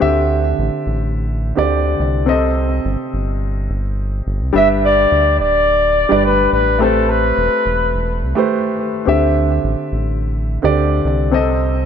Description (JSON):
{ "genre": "sunset chillout", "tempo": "106 BPM", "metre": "4/4", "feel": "straight", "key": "unclear", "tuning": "A4 = 440 Hz", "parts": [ { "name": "warm grand piano", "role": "accompaniment", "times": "0.0-11.9 s", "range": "C3 to E5", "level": "-18 LUFS", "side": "moving between left 5 dB and right 6 dB", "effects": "auto-pan, digital delay" }, { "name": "round analog bass", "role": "bass", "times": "0.0-11.9 s", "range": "D1 to D2", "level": "-19 LUFS", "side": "equal", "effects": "none" }, { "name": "mellow flugelhorn", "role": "melody", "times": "4.6-8.2 s", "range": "A4 to E5", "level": "-14 LUFS", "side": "left 2 dB", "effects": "digital delay" } ], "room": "light reverb, small room ambience", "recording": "faint mains hum", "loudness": "-14 LUFS", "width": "side -8 dB against mid", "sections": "0.0-11.9 A section", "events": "none", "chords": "0.0 D9sus4; 2.3 Cm6; 4.5 G6; 6.8 Am9; 9.1 D9sus4; 11.3 Cm6" }